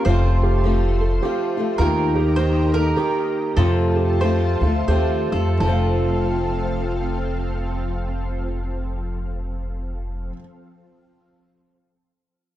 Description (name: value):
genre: acoustic folk duo or small band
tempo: 80-104 BPM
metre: 3/4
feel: swing 62% on 8ths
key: F mixolydian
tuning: A4 = 440 Hz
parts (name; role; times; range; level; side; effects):
- bowl-back mandolin; second line; 0.0-10.3 s; A4 to C5; -28 LUFS; right 4 dB; slapback echo
- picked steel-string acoustic guitar; accompaniment; 0.0-10.4 s; F2 to G4; -24 LUFS; left 4 dB; none
- analog string pad; sustained chords; 0.0-10.3 s; F3 to C6; -31 LUFS; right 1 dB; ensemble chorus
- felt-muted upright piano; arpeggios; 0.0-10.4 s; F4 to F5; -27 LUFS; right 6 dB; none
- upright bass; bass; 0.1-10.3 s; F1 to F2; -21 LUFS; equal; none
room: light reverb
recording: dark, warm production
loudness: -18 LUFS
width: side -13 dB against mid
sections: 0.0-5.6 A section; 5.6-10.1 B section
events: slowing down 1.8-5.6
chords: 0.1 F; 1.8 Eb; 3.6 F